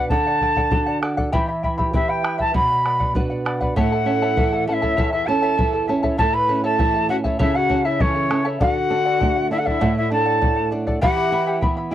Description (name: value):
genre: andean folk, Andean ensemble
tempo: 99 BPM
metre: 2/4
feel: straight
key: unclear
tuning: A4 = 441 Hz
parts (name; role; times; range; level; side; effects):
- breathy bright large quena; melody; 0.0-11.9 s; C#5 to B5; -20 LUFS; left 1 dB; none
- charango; accompaniment; 0.0-11.9 s; E4 to B5; -26 LUFS; left 2 dB; none
- flamenco guitar; accompaniment; 0.0-11.9 s; E2 to B4; -24 LUFS; right 3 dB; none
- bombo; percussion; 0.1-11.8 s; none; -23 LUFS; equal; none
- reedy pan flute; second line; 3.8-11.9 s; C#4 to B4; -25 LUFS; right 1 dB; none
room: little or no reverb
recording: dry, gritty hardware recording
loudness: -17 LUFS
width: side -12 dB against mid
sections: 0.0-3.8 A section; 3.8-11.9 B section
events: none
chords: 0.1 D; 1.3 Em; 2.5 Bm; 3.8 A; 8.6 D; 11.0 Em